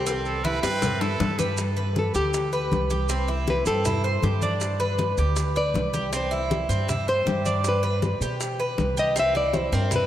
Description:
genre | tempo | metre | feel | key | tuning
latin, Cuban son and guajira | 158 BPM | 4/4 | straight | G major | A4 = 440 Hz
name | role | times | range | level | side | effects
nylon-string guitar | melody | 0.0-10.1 s | G4 to E5 | -28 LUFS | left 1 dB | none
Cuban tres | arpeggios | 0.0-10.1 s | C4 to C5 | -28 LUFS | right 2 dB | none
upright bass | bass | 0.0-10.1 s | C2 to B2 | -27 LUFS | equal | none
congas | percussion | 0.1-10.1 s | none | -33 LUFS | left 1 dB | none
cowbell and bongos | percussion | 0.1-10.1 s | none | -33 LUFS | left 5 dB | none
maracas | percussion | 0.1-10.1 s | none | -37 LUFS | right 7 dB | none
brilliant trumpet | second line | 0.2-1.6 s | G4 to B4 | -32 LUFS | right 2 dB | tape echo
room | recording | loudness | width
wet cathedral reverb, RT60 4.6 s | in a vast, echoing space | -22 LUFS | side -12 dB against mid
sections
0.0-1.6 A section; 1.6-10.1 B section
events
drum fill 0.6-1.6; nylon-string guitar solo 1.6-10.1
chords
0.1 C; 1.6 G; 3.1 Cadd9; 4.6 G; 6.1 Cadd9; 7.6 G; 9.2 Cadd9

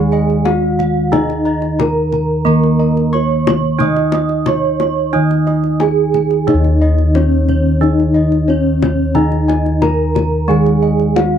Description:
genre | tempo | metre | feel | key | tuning
Javanese gamelan | 90 BPM | 4/4 | straight | Eb slendro | A4 = 438 Hz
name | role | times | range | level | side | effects
gamelan-type bronze metallophone | melody | 0.0-11.4 s | Db4-25c to Eb5 | -17 LUFS | right 2 dB | none
gamelan-type bronze metallophone | accompaniment | 0.0-11.4 s | Eb3 to Eb4 | -19 LUFS | right 5 dB | none
gamelan-type bossed gongs | arpeggios | 0.0-11.4 s | Db5-25c to Db6-25c | -25 LUFS | left 7 dB | none
gamelan-type bronze metallophone | arpeggios | 0.0-11.4 s | Db5-25c to Eb6 | -26 LUFS | right 7 dB | none
gamelan-type bossed gongs | bass | 0.0-11.4 s | Eb2 to Eb5 | -16 LUFS | left 1 dB | none
kendang | percussion | 0.3-11.3 s | none | -21 LUFS | left 8 dB | none
room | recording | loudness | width
light reverb | dry, close 1970s-style studio recording | -12 LUFS | side -8 dB against mid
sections
0.0-11.4 A section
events
none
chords
none

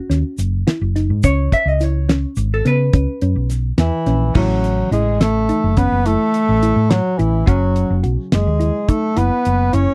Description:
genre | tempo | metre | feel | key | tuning
progressive instrumental, band music in an uneven meter | 212 BPM (eighths) | 11/8 | straight | unclear | A4 = 439 Hz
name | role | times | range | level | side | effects
vintage hollow-body jazz guitar | accompaniment | 0.0-9.9 s | C#3 to E5 | -27 LUFS | equal | none
thumb-piano-like synth pluck | arpeggios | 0.1-9.9 s | B3 to F#4 | -27 LUFS | equal | chorus
hollow-body short-scale fingered electric bass | bass | 0.1-9.9 s | F#1 to C#3 | -20 LUFS | equal | none
damped 70s drum kit | drums | 0.1-9.9 s | crash cymbal, hi-hat, kick drum, snare drum | -19 LUFS | equal | none
egg shaker | percussion | 0.1-3.9 s | none | -40 LUFS | equal | none
warm bass clarinet | melody | 3.8-9.9 s | E3 to C#4 | -21 LUFS | equal | none
breathy alto saxophone | second line | 3.8-9.9 s | E4 to C#5 | -28 LUFS | equal | none
room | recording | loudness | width
little or no reverb | dry, close 1970s-style studio recording | -17 LUFS | mono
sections
0.0-4.4 A section; 4.4-9.9 B section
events
hollow-body jazz guitar solo 0.0-4.4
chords
0.0 F#5; 1.2 C#m; 4.4 A; 7.5 F#5

